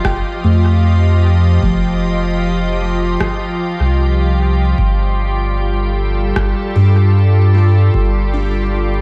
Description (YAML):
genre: ambient dub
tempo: 76 BPM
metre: 4/4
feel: straight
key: unclear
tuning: A4 = 440 Hz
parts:
  - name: soft additive organ-like pad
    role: sustained chords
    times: 0.0-9.0 s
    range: F3 to Eb5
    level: -22 LUFS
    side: equal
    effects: ensemble chorus, built-in reverb
  - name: buzzing kalimba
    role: arpeggios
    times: 0.0-9.0 s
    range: F3 to G5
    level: -25 LUFS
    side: equal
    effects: diffuse ambient delay
  - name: soft dub sub bass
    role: bass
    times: 0.0-9.0 s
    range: F1 to G2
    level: -16 LUFS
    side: equal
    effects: none
  - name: electronic kick drum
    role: drums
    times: 0.0-8.1 s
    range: none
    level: -23 LUFS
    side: equal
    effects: none
  - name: electronic rim click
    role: drums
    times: 0.0-6.5 s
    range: none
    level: -27 LUFS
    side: equal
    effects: dub echo
room: light reverb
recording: vinyl crackle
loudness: -14 LUFS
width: mono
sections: 0.0-9.0 A section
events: filter sweep on kalimba 0.0-9.0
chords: 0.0 F5; 4.8 Gsus2